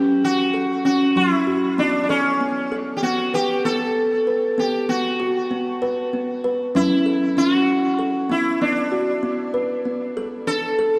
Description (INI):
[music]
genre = world meditative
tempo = 64 BPM (dotted quarters)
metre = 6/8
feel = straight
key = B minor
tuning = A4 = 440 Hz
[part]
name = sitar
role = melody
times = 0.0-11.0 s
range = C#4 to A4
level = -24 LUFS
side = equal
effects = shimmer reverb, diffuse ambient delay
[part]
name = kalimba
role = arpeggios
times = 0.0-11.0 s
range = F#3 to B4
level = -23 LUFS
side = equal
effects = shimmer reverb
[sound]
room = wet concert hall reverb, RT60 2.1 s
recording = dark, warm production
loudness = -21 LUFS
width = mono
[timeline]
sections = 0.0-10.5 A section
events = none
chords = 0.0 F#m; 3.0 B5; 6.8 F#m; 8.6 Bm; 10.5 D5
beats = 0.23 | 1.16 2.09 | 3.02 3.96 | 4.89 5.82 | 6.75 7.68 | 8.61 9.54 | 10.47